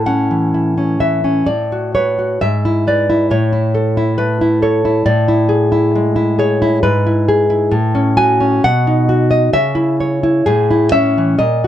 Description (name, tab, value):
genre	romantic piece for solo classical guitar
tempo	67 BPM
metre	2/4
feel	uneven beats, rubato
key	A major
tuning	A4 = 440 Hz
part	nylon-string guitar	solo	0.0-11.7 s	G#2 to G#5	-12 LUFS	equal	none
room	moderate small room reverb, RT60 0.5 s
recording	dark, warm production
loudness	-12 LUFS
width	side -11 dB against mid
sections	0.0-11.7 A section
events	none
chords	0.0 A; 1.5 Bm7/A; 2.4 E7/G#; 3.3 A; 5.1 E7/A; 6.8 E/G#; 7.7 F#m/A; 8.6 B; 9.5 C#m; 10.4 Amaj7